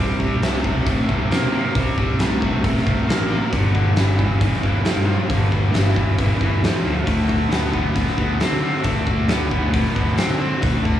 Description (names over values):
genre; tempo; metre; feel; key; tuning
blues rock power trio and southern rock; 135 BPM; 4/4; straight; G mixolydian; A4 = 442 Hz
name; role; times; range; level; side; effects
cranked stack guitar; riff; 0.0-11.0 s; G2 to C4; -22 LUFS; equal; overdrive, slapback echo
fuzz fingered electric bass; bass; 0.0-11.0 s; G1 to D3; -22 LUFS; equal; overdrive
oversized low-tuned drum kit; drums; 0.2-11.0 s; hi-hat, kick drum, snare drum; -21 LUFS; equal; none
room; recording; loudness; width
light reverb; live gig heard through the venue's PA, club reverb, studio reverb; -17 LUFS; side -11 dB against mid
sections
0.0-11.0 A section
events
none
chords
0.0 C5; 3.5 G5; 7.1 D5